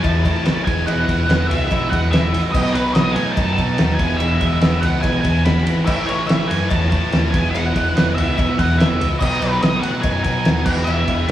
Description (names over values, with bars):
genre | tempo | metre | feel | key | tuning
classic rock | 144 BPM | 4/4 | straight | E major | A4 = 442 Hz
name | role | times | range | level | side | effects
octave-fuzz lead guitar | melody | 0.0-11.3 s | B4 to B5 | -23 LUFS | right 1 dB | wah, distortion
sludgy distorted guitar | riff | 0.0-11.3 s | E2 to B3 | -24 LUFS | right 1 dB | overdrive
tight distorted guitar | riff | 0.0-11.3 s | A2 to E4 | -26 LUFS | equal | distortion
growling fingered electric bass | bass | 0.0-11.3 s | E1 to B2 | -21 LUFS | equal | overdrive
cloth-damped thuddy drum kit | drums | 0.0-11.3 s | crash cymbal, kick drum, ride cymbal, snare drum | -20 LUFS | equal | none
cowbell | percussion | 0.0-11.2 s | none | -33 LUFS | left 4 dB | none
room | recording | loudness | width
wet stone room reverb, RT60 1.1 s | band playing live in one room, studio reverb | -15 LUFS | side -12 dB against mid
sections
0.0-11.3 A section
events
none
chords
0.0 A; 0.7 E; 2.5 B; 4.0 E; 5.9 A; 7.3 E; 9.2 B; 10.7 E